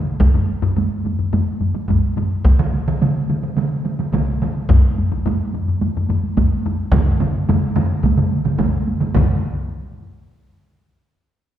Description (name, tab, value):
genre	japanese traditional, taiko drum ensemble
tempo	107 BPM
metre	4/4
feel	straight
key	none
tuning	none
part	solo taiko drums	percussion	0.1-9.4 s	none	-23 LUFS	right 4 dB	none
part	taiko ensemble	percussion	0.2-9.4 s	none	-19 LUFS	equal	none
part	taiko ensemble	percussion	0.3-9.7 s	none	-20 LUFS	left 2 dB	none
part	taiko ensemble	percussion	2.6-9.7 s	none	-20 LUFS	right 2 dB	none
room	wet scoring stage reverb, RT60 1.6 s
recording	recorded in a church or concert hall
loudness	-16 LUFS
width	side -11 dB against mid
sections	0.0-9.2 A section; 9.2-11.4 B section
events	none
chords	none